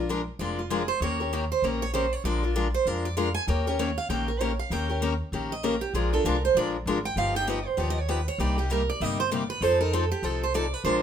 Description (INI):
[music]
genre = acoustic string swing (jazz manouche)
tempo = 195 BPM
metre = 4/4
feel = swing 60% on 8ths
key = Bb mixolydian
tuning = A4 = 440 Hz
[part]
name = picked steel-string acoustic guitar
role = accompaniment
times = 0.0-11.0 s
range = C3 to Bb4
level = -28 LUFS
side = left 4 dB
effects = none
[part]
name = upright bass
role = bass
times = 0.0-11.0 s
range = F1 to F2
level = -30 LUFS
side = equal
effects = none
[part]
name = picked steel-string acoustic guitar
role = second line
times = 0.4-11.0 s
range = F4 to Ab5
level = -28 LUFS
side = right 6 dB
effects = none
[sound]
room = moderate studio reverb, RT60 0.6 s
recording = minimal, uncompressed stereo recording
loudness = -24 LUFS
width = side -8 dB against mid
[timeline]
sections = 0.0-11.0 A section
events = steel-string acoustic guitar solo 0.0-11.0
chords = 0.0 Bb7; 1.0 Eb7; 2.2 Bb7; 3.5 Eb7; 5.9 Bb7; 7.2 Gaug7; 8.4 Cm7; 9.6 F7